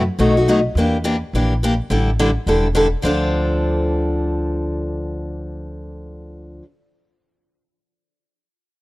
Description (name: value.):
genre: acoustic string swing (jazz manouche).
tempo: 211 BPM.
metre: 4/4.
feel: swing 59% on 8ths.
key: D minor.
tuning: A4 = 438 Hz.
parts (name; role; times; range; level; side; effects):
picked steel-string acoustic guitar; accompaniment; 0.0-6.7 s; B2 to A4; -19 LUFS; left 1 dB; none.
upright bass; bass; 0.0-6.6 s; E1 to E2; -22 LUFS; equal; none.
room: small room ambience.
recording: dry, close 1970s-style studio recording.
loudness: -16 LUFS.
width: side -19 dB against mid.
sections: 0.8-3.0 A section; 3.0-5.3 B section.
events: none.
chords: 0.2 B7; 0.8 Em7b5; 1.9 A7sus4; 3.0 Dm7.